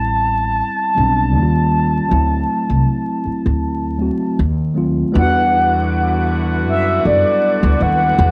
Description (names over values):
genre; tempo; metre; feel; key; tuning
R&B, neo-soul; 79 BPM; 4/4; swing 53% on 16ths; E minor; A4 = 440 Hz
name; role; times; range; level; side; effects
mellow horn-like synth lead; melody; 0.0-8.3 s; D5 to A5; -20 LUFS; equal; chorus, cassette tape, plate reverb
mellow tine electric piano; accompaniment; 0.0-8.3 s; F#3 to A4; -23 LUFS; equal; cassette tape, plate reverb
upright bass; bass; 0.0-8.3 s; A1 to F#2; -20 LUFS; equal; transformer saturation
tonewheel organ; sustained chords; 5.1-8.3 s; E4 to D6; -29 LUFS; equal; chorus vibrato, slow rotary speaker, cassette tape, plate reverb
bright saxophone section; stabs; 5.1-8.3 s; D3 to F#4; -28 LUFS; equal; cassette tape, plate reverb
room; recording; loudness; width
moderate booth ambience, RT60 0.2 s; home recording on cassette, vinyl crackle; -16 LUFS; mono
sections
0.0-5.1 A section; 5.1-8.3 B section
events
none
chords
0.0 Am9; 1.3 D#9; 2.1 D9; 4.4 D#dim7; 5.1 Em9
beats
0.58 1.34 | 2.10 2.86 3.62 4.38 | 5.14 5.90 6.66 7.42 | 8.17